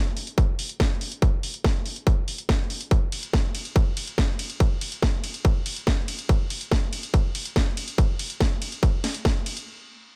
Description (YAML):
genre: trance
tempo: 142 BPM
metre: 4/4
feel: straight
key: none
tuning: none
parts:
  - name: techno drum kit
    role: drums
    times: 0.2-9.7 s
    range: hi-hat, ride cymbal, snare drum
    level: -33 LUFS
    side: equal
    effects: none
  - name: electronic kick drum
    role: drums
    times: 0.4-9.3 s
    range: none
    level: -24 LUFS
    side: equal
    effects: distortion
room: little or no reverb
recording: none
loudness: -25 LUFS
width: mono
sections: 0.0-9.7 A section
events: drop 0.0-9.7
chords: none